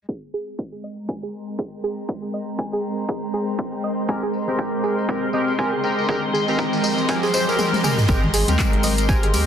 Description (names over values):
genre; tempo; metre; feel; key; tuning
deep house; 120 BPM; 4/4; swing 58% on 16ths; Ab major; A4 = 439 Hz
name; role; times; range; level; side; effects
soft string machine; sustained chords; 0.1-9.5 s; Ab3 to G5; -29 LUFS; equal; ensemble chorus, vintage 12-bit sampler grit, sidechain pumping
soft round pluck; arpeggios; 0.1-9.3 s; Ab4 to Ab5; -28 LUFS; right 2 dB; chorus, sidechain pumping, dub echo
electronic kick drum; drums; 0.1-9.2 s; none; -24 LUFS; equal; high-pass filter on kick
dark studio string section; texture; 0.1-9.5 s; Ab3 to C6; -30 LUFS; left 1 dB; sidechain pumping
chorused polysynth; stabs; 4.1-9.5 s; Ab3 to C5; -23 LUFS; equal; sidechain pumping, dub echo
tambourine; percussion; 4.1-9.5 s; none; -30 LUFS; left 2 dB; none
riser; sound effects; 5.2-8.1 s; none; -30 LUFS; right 2 dB; none
deep house drum kit; drums; 7.6-9.5 s; handclaps, hi-hat, toms; -24 LUFS; left 1 dB; overdrive, low-pass filter on toms, low-pass filter on hats, low-pass filter on snare, low-pass filter on room
round analog bass; bass; 8.1-9.5 s; Ab1 to Eb2; -22 LUFS; equal; sidechain pumping
congas; percussion; 8.2-9.5 s; none; -29 LUFS; left 3 dB; none
room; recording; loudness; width
light reverb, digital ambience; dense, heavily limited modern master, low-pass filter; -19 LUFS; side -8 dB against mid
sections
0.1-8.1 A section; 8.1-9.5 B section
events
fade-in on string section 0.1-8.1; filter sweep on string machine 0.1-8.1; filter sweep on synth arpeggio sound 0.1-8.1; filter sweep 0.1-8.1; riser 5.2-8.1; kick drops out 7.6-8.1; drum fill 7.6-8.1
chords
0.1 Abmaj9